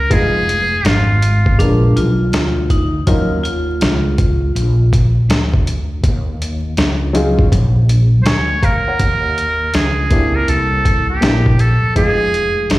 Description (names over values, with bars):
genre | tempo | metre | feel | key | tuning
hip hop, jazz-hop | 81 BPM | 4/4 | swing 65% on 16ths | unclear | A4 = 440 Hz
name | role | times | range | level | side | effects
trumpet with metal mute | melody | 0.0-1.6, 8.2-12.8 s | F4 to Db5 | -17 LUFS | right 1 dB | plate reverb, slapback echo
woody fretless electric bass | bass | 0.0-12.8 s | F1 to Eb2 | -15 LUFS | equal | ensemble chorus
dark baby grand piano | accompaniment | 0.1-12.8 s | Gb3 to Db6 | -19 LUFS | equal | plate reverb, slapback echo
boom bap sampler-style drum kit | drums | 0.1-12.8 s | hi-hat, kick drum, snare drum | -16 LUFS | equal | none
vibraphone with hard mallets | second line | 1.6-4.9 s | D4 to F4 | -21 LUFS | equal | plate reverb, slapback echo
room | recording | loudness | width
light reverb | live gig heard through the venue's PA, recital hall reverb, vinyl crackle | -12 LUFS | side -17 dB against mid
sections
0.0-9.0 A section; 9.0-12.8 B section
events
none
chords
0.1 Fm7b5; 1.6 Bb7b9; 3.1 Ebm9; 9.0 Eb5; 10.5 C7; 12.0 Fm7b5